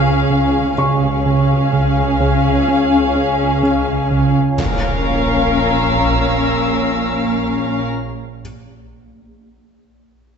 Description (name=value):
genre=cinematic, suspense film score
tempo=63 BPM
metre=4/4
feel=straight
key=Bb minor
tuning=A4 = 439 Hz
part: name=muted chamber violin section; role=melody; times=0.0-7.8 s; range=F5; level=-24 LUFS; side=left 4 dB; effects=none
part: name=muted chamber violin section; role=second line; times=0.0-7.8 s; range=Ab4 to Bb4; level=-23 LUFS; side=left 2 dB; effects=none
part: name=muted chamber viola section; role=accompaniment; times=0.0-7.8 s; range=Db4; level=-22 LUFS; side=left 3 dB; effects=none
part: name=warbly tape-like pad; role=sustained chords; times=0.0-7.8 s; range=Db5 to Bb5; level=-24 LUFS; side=equal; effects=chorus, built-in reverb, phaser
part: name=fat analog bass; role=riff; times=0.0-4.4 s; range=Db3 to Db4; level=-18 LUFS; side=right 2 dB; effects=none
part: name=muted chamber cello section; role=bass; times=0.0-7.8 s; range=Bb2 to Db3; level=-22 LUFS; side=right 3 dB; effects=none
part: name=muted chamber double bass section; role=bass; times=0.0-7.8 s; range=Bb1 to Db2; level=-24 LUFS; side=right 3 dB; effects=none
part: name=swarming drone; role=drone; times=0.0-7.8 s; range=Bb1 to Db2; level=-25 LUFS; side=left 1 dB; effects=built-in reverb, phaser
part: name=felt-muted upright piano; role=texture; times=0.0-4.6 s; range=Db6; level=-28 LUFS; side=left 2 dB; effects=none
part: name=taiko ensemble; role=drums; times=4.6-6.5 s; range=none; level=barely audible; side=none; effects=none
part: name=impact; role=sound effects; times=4.6-7.9 s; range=none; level=-25 LUFS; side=equal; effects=none
part: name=muted chamber violin section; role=texture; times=4.6-7.9 s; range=Bb5 to E6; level=-27 LUFS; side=right 1 dB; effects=none
room=wet scoring stage reverb, RT60 1.8 s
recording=nothing above 8.0 kHz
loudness=-13 LUFS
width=side -6 dB against mid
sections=0.0-4.6 A section; 4.6-8.4 B section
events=impact 4.6-8.4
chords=0.0 Db; 4.6 Bbm